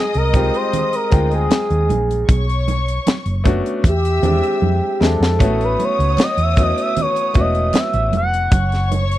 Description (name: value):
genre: lush 1970s-style soul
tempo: 77 BPM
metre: 4/4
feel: straight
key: unclear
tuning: A4 = 440 Hz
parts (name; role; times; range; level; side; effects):
- expressive synth lead; melody; 0.0-8.9 s; G4 to F#5; -19 LUFS; equal; chorus
- warm studio string section; second line; 0.0-9.2 s; C#5 to E6; -27 LUFS; left 2 dB; none
- bright concert grand piano; accompaniment; 0.0-8.5 s; G3 to G5; -23 LUFS; left 2 dB; none
- tight funk drum kit; drums; 0.1-9.2 s; hi-hat, kick drum, snare drum; -16 LUFS; equal; none
- hollow-body short-scale fingered electric bass; bass; 0.2-9.2 s; E1 to F2; -18 LUFS; equal; none
- congas; percussion; 0.3-9.1 s; none; -26 LUFS; right 6 dB; none
- group handclap; percussion; 6.2-7.9 s; none; -35 LUFS; left 13 dB; none
room: little or no reverb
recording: dry, close 1970s-style studio recording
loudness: -14 LUFS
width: side -14 dB against mid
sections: 0.0-9.2 A section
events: analog synth lead solo 0.0-9.2; drum fill 4.6-5.4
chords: 0.0 Fm9; 2.3 Bm9; 3.8 E7alt; 5.4 A6; 8.5 F#5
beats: 0.73 1.51 | 2.29 3.07 3.85 4.62 | 5.40 6.18 6.96 7.74 | 8.52